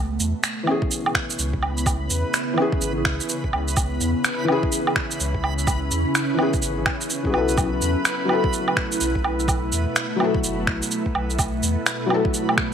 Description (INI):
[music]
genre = future garage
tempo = 126 BPM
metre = 4/4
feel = swing 63% on 16ths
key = C# minor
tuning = A4 = 440 Hz
[part]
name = ethereal airy pad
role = sustained chords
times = 0.0-12.7 s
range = B2 to E4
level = -27 LUFS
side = right 1 dB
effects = ensemble chorus, built-in reverb, phaser, sidechain pumping
[part]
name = warm sub bass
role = bass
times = 0.0-11.8 s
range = F#1 to E2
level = -26 LUFS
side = equal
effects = sidechain pumping
[part]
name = backwards swelling texture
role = texture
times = 1.7-12.7 s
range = B4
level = -31 LUFS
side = right 2 dB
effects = built-in reverb
[part]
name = electronic shaker, finger snaps and woodblock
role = drums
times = 0.2-12.7 s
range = none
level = -24 LUFS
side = right 2 dB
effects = none
[part]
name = felt-muted upright piano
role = accompaniment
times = 0.6-12.7 s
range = E3 to A4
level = -26 LUFS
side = left 3 dB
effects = sidechain pumping, digital delay
[part]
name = electronic kick drum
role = drums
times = 0.8-12.7 s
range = none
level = -26 LUFS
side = equal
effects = none
[sound]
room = light reverb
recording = vinyl crackle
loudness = -20 LUFS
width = side -8 dB against mid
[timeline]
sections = 0.0-12.7 A section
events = none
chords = 0.0 C#m7; 7.6 B7sus4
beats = 0.44 0.91 1.39 | 1.86 2.34 2.82 3.29 | 3.77 4.25 4.72 5.20 | 5.67 6.15 6.63 7.10 | 7.58 8.05 8.53 9.01 | 9.48 9.96 10.44 10.91 | 11.39 11.87 12.34